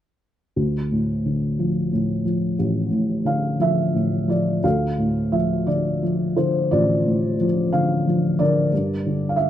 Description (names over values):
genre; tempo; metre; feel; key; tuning
classical, lyrical solo piano; 59 BPM (dotted quarters); 6/8; rubato; unclear; A4 = 440 Hz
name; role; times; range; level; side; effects
felt-muted upright piano; solo; 0.6-9.5 s; A1 to F5; -19 LUFS; equal; none
room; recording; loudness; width
moderate recital hall reverb, RT60 1.6 s; dark, warm production; -19 LUFS; side -11 dB against mid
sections
0.6-4.6 A section; 4.6-9.5 B section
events
none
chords
0.6 Dm; 8.7 Gm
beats
| 0.56 1.59 | 2.58 3.59 | 4.63 5.67 | 6.71 7.73 | 8.72